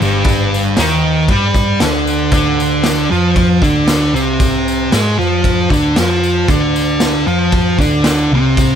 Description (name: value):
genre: garage rock duo or trio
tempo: 116 BPM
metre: 4/4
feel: straight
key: unclear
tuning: A4 = 445 Hz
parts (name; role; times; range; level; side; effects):
- thick fuzz guitar; riff; 0.0-8.8 s; G2 to G#4; -13 LUFS; equal; distortion
- hollow-body short-scale picked electric bass; bass; 0.0-8.8 s; G1 to G#2; -18 LUFS; equal; none
- tambourine; percussion; 0.0-8.7 s; none; -30 LUFS; left 6 dB; none
- raw garage drum kit; drums; 0.2-8.7 s; crash cymbal, kick drum, snare drum; -17 LUFS; equal; none
room: little or no reverb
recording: none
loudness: -11 LUFS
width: side -8 dB against mid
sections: 0.0-8.8 A section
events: none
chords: 0.0 Cmadd9/G (rootless); 2.3 Csus24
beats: | 0.26 0.78 1.30 1.81 | 2.33 2.85 3.37 3.89 | 4.41 4.93 5.45 5.97 | 6.49 7.01 7.53 8.05 | 8.57